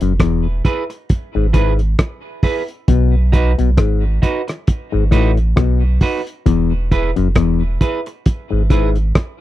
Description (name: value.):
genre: roots reggae.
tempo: 67 BPM.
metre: 4/4.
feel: swing 57% on 16ths.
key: E major.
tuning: A4 = 441 Hz.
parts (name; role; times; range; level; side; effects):
auto-wah clav; riff; 0.0-9.0 s; E2 to B2; -18 LUFS; left 7 dB; overdrive.
warm sub bass; bass; 0.0-9.1 s; E1 to B1; -16 LUFS; right 1 dB; none.
cloth-damped thuddy drum kit; drums; 0.0-9.4 s; hi-hat, kick drum, rim click; -14 LUFS; equal; none.
clean electric guitar; accompaniment; 0.6-8.9 s; D#4 to B4; -24 LUFS; right 4 dB; tube saturation, tape echo.
room: little or no reverb.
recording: dry, close 1970s-style studio recording.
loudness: -14 LUFS.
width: side -14 dB against mid.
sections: 0.0-9.4 A section.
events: none.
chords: 0.0 E; 2.9 B; 6.5 E.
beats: 0.20 1.09 1.99 | 2.88 3.78 4.67 5.57 | 6.46 7.36 8.26 9.15.